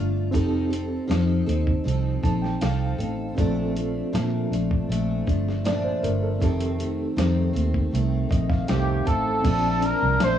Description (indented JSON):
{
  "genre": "indie pop, bedroom pop",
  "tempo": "79 BPM",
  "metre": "4/4",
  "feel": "straight",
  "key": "Bb major",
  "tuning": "A4 = 440 Hz",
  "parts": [
    { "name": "picked plugged-in steel-string acoustic guitar", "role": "accompaniment", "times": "0.0-10.4 s", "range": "F2 to A4", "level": "-28 LUFS", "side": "left 4 dB", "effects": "wide subtle chorus, vibrato effect, cassette tape" },
    { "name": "reed electric piano", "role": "accompaniment", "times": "0.0-10.4 s", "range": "C4 to A5", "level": "-30 LUFS", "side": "right 6 dB", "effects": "fast tremolo, cassette tape" },
    { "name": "vintage muted fingered electric bass", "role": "bass", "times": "0.0-10.4 s", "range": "F1 to Bb2", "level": "-24 LUFS", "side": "right 1 dB", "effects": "none" },
    { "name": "dusty soul sampler-style drum kit", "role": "drums", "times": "0.3-10.4 s", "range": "crash cymbal, hi-hat, kick drum, snare drum", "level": "-27 LUFS", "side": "equal", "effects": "cassette tape" },
    { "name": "warm trumpet", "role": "melody", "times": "8.7-10.4 s", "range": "G4 to C5", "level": "-23 LUFS", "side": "equal", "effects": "analog chorus" }
  ],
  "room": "light reverb",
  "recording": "home recording on cassette",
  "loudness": "-21 LUFS",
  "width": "side -10 dB against mid",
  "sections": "0.0-9.5 A section",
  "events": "reed electric piano fill 1.9-3.4, 7.9-9.5",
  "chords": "0.3 F7; 3.4 Bbmaj7; 6.4 F7; 9.5 Bbmaj7"
}